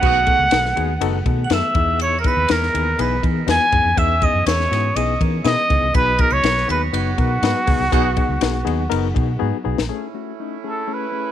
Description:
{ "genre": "uptempo 1960s-style soul", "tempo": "122 BPM", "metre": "4/4", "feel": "straight", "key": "unclear", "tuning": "A4 = 439 Hz", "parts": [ { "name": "breathy trumpet", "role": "melody", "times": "0.0-11.3 s", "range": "F#4 to G#5", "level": "-19 LUFS", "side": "right 1 dB", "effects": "tape echo" }, { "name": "glockenspiel with brass mallets", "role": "second line", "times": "0.0-9.4 s", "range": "F#6 to G#7", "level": "-30 LUFS", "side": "right 15 dB", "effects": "tape echo" }, { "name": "warm horn section", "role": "second line", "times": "0.0-0.4, 7.9-11.3 s", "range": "A3 to F#4", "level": "-26 LUFS", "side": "right 16 dB", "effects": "none" }, { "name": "barky reed electric piano", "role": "accompaniment", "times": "0.0-11.3 s", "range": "A3 to B4", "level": "-25 LUFS", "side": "left 13 dB", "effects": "overdrive, fast tremolo" }, { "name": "mellow tonewheel organ", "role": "sustained chords", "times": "0.0-9.9 s", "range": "D#3 to D#5", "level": "-31 LUFS", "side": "right 1 dB", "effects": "chorus vibrato, slow rotary speaker" }, { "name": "vintage muted fingered electric bass", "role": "bass", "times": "0.0-9.9 s", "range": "F#1 to E3", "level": "-22 LUFS", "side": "right 1 dB", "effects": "none" }, { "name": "compact cocktail drum kit", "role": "drums", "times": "0.0-9.9 s", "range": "hi-hat, kick drum, ride cymbal, snare drum", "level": "-22 LUFS", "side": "left 2 dB", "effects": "none" } ], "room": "little or no reverb", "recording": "1960s-style stereo with parts hard left and right", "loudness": "-16 LUFS", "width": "side -10 dB against mid", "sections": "0.0-9.9 A section; 9.9-11.3 B section", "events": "band accent 0.0-2.0, 7.9-9.9; drum fill 9.4-9.9", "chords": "0.0 B7; 1.8 Emaj7; 5.9 B6; 9.9 Amaj7" }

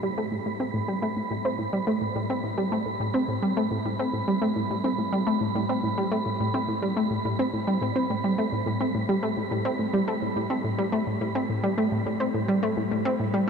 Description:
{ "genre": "ambient, sequencer-driven space music", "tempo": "106 BPM", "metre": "4/4", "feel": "straight", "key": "A minor", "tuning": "A4 = 441 Hz", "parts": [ { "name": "analog pluck", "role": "riff", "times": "0.0-13.5 s", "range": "A2 to C4", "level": "-24 LUFS", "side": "equal", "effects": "chorus, ping-pong delay" }, { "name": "wind-like tuned noise texture", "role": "texture", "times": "0.0-13.5 s", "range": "B5", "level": "-34 LUFS", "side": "right 5 dB", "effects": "built-in reverb" } ], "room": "wet huge ambient reverb, RT60 7.4 s", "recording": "dark, warm production", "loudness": "-24 LUFS", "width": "side -6 dB against mid", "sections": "0.0-13.5 A section", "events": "filter sweep on synth arpeggio sound 0.0-13.5", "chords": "0.0 Am" }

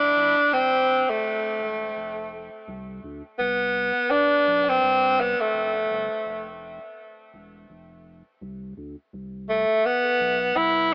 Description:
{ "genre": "roots reggae", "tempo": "84 BPM", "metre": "4/4", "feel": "swing 58% on 16ths", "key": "unclear", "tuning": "A4 = 436 Hz", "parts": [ { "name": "clear tenor saxophone", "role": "melody", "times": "0.0-10.9 s", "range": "A3 to E4", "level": "-20 LUFS", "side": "equal", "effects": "tape echo" }, { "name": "warm sub bass", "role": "bass", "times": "0.0-10.9 s", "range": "E1 to D2", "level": "-40 LUFS", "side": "equal", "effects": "none" } ], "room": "moderate spring reverb, RT60 2.8 s", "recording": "AM radio sound", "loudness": "-20 LUFS", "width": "side -35 dB against mid", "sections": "0.0-10.9 A section", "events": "none", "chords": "0.0 Fmaj7; 2.7 Bm; 5.5 F; 8.4 Cmaj7(no3)" }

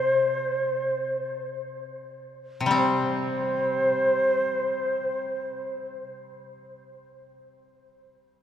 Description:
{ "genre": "japanese traditional, Japanese chamber music", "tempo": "free time", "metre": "none", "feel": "none", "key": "unclear", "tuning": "A4 = 439 Hz", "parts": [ { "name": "breathy shakuhachi", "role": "melody", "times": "0.0-6.0 s", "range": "C5 to D5", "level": "-26 LUFS", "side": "equal", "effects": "none" }, { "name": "koto", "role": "accompaniment", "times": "0.0-6.0 s", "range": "C3 to C4", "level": "-29 LUFS", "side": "left 2 dB", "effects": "none" } ], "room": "wet cathedral reverb, RT60 5.9 s", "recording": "recorded in a church or concert hall", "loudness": "-23 LUFS", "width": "side -10 dB against mid", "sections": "0.0-2.7 A section; 2.7-7.1 B section", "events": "slowing down 0.0-2.7", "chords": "none" }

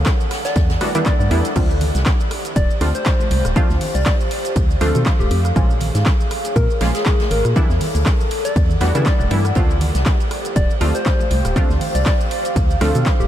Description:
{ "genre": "deep house", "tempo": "120 BPM", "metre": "4/4", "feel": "swing 56% on 16ths", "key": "D dorian", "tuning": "A4 = 440 Hz", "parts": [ { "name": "filtered dub chord stab", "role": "stabs", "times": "0.0-13.3 s", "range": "E3 to F#4", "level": "-25 LUFS", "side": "right 1 dB", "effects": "chorus, sidechain pumping, ping-pong delay" }, { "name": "organ-like FM bass", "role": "bass", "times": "0.0-13.3 s", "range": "D1 to C#3", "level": "-18 LUFS", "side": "equal", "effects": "sidechain pumping" }, { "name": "open jazz drum kit", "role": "drums", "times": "0.0-13.2 s", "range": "hi-hat, ride cymbal, snare drum", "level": "-33 LUFS", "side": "right 2 dB", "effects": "high-pass filter on cymbals, high-pass filter on hats, high-pass filter on snare, high-pass filter on room" }, { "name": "warbly tape-like pad", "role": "texture", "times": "0.0-13.3 s", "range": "G4 to F#5", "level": "-27 LUFS", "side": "equal", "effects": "chorus, built-in reverb, sidechain pumping" }, { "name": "electronic kick drum", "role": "drums", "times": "0.1-13.2 s", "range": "none", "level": "-17 LUFS", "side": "equal", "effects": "none" }, { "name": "punchy analog drum machine", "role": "drums", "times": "0.1-13.3 s", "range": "crash cymbal, handclaps, hi-hat, rim click, shaker", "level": "-28 LUFS", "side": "equal", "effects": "none" }, { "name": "soft struck synth lead", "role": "melody", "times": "0.5-13.3 s", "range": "G4 to D5", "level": "-26 LUFS", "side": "left 2 dB", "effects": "chorus, tremolo, ping-pong delay" }, { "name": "congas", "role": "percussion", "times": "0.7-13.3 s", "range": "none", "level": "-30 LUFS", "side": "right 3 dB", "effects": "none" } ], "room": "light reverb", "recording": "none", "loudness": "-15 LUFS", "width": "side -11 dB against mid", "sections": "0.0-13.3 A section", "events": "none", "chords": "0.0 Em7; 1.6 Dm7; 5.6 Bbm7; 7.6 Em7; 9.6 Dm7" }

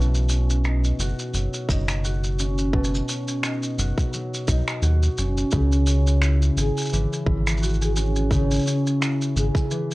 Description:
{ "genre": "folktronica", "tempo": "86 BPM", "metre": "4/4", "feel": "swing 56% on 16ths", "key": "unclear", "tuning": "A4 = 441 Hz", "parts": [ { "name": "concert harp", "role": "arpeggios", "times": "0.0-9.9 s", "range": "B2 to G#4", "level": "-25 LUFS", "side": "equal", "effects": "cassette tape, analog delay" }, { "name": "round analog bass", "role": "bass", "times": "0.0-9.5 s", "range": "F#1 to D#2", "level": "-21 LUFS", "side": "equal", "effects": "none" }, { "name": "shaker and finger snaps", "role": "drums", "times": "0.0-9.9 s", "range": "none", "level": "-29 LUFS", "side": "right 1 dB", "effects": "none" }, { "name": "electronic kick drum", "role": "drums", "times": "1.7-9.7 s", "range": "none", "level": "-24 LUFS", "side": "equal", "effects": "none" } ], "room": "light reverb", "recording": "home recording on cassette", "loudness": "-20 LUFS", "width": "side -20 dB against mid", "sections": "0.0-9.9 A section", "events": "none", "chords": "0.0 Badd9; 5.5 C#m" }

